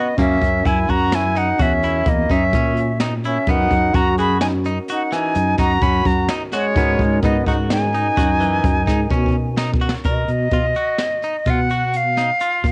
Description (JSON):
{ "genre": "progressive instrumental, band music in an uneven meter", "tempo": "128 BPM", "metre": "7/4", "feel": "straight", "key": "G# minor", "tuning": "A4 = 440 Hz", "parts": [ { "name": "silver concert flute", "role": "melody", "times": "0.0-12.7 s", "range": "C#5 to B5", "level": "-23 LUFS", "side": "equal", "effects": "cassette tape" }, { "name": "warm flugelhorn", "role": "second line", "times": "0.0-9.5 s", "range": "G#3 to G#4", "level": "-26 LUFS", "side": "equal", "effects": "none" }, { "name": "barky tine electric piano", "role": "accompaniment", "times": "0.0-10.0 s", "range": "C#4 to B4", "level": "-32 LUFS", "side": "equal", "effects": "overdrive" }, { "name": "direct-recorded clean electric guitar", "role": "arpeggios", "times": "0.0-12.7 s", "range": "E3 to A#4", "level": "-30 LUFS", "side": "equal", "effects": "analog delay" }, { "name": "fretless electric bass", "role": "bass", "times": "0.2-12.7 s", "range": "E2 to B2", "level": "-23 LUFS", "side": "equal", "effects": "ensemble chorus" }, { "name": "jazz brush drum kit", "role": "drums", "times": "0.2-12.7 s", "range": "hi-hat, kick drum, snare drum", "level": "-24 LUFS", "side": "equal", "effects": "cassette tape" } ], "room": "light reverb, small room ambience", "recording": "home recording on cassette", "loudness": "-18 LUFS", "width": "mono", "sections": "0.0-10.1 A section; 10.1-12.7 B section", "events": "drum fill 9.1-10.1", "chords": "0.2 F#7; 3.5 Bmaj7/F# (rootless); 6.8 G#m7; 10.1 B", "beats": "| 0.18 0.65 1.12 1.59 2.06 2.53 3.00 | 3.48 3.94 4.41 4.88 5.35 5.82 6.29 | 6.76 7.23 7.70 8.17 8.64 9.11 9.58 | 10.05 10.52 10.99 11.46 11.93 12.40" }